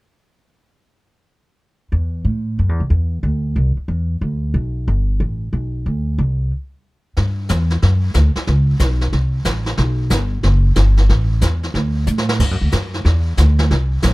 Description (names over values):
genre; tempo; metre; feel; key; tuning
jazz piano trio; 183 BPM; 4/4; swing 64% on 8ths; G major; A4 = 442 Hz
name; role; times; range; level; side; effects
upright bass; bass; 1.9-14.1 s; F#1 to A2; -15 LUFS; equal; none
jazz brush drum kit; drums; 7.2-14.1 s; brushed snare drum, crash cymbal, hi-hat, kick drum, snare drum; -23 LUFS; right 1 dB; none
room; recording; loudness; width
little or no reverb; dark, warm production; -15 LUFS; side -21 dB against mid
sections
1.9-7.2 A section; 7.2-14.1 B section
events
break 6.5-7.2; drum fill 12.1-12.4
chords
none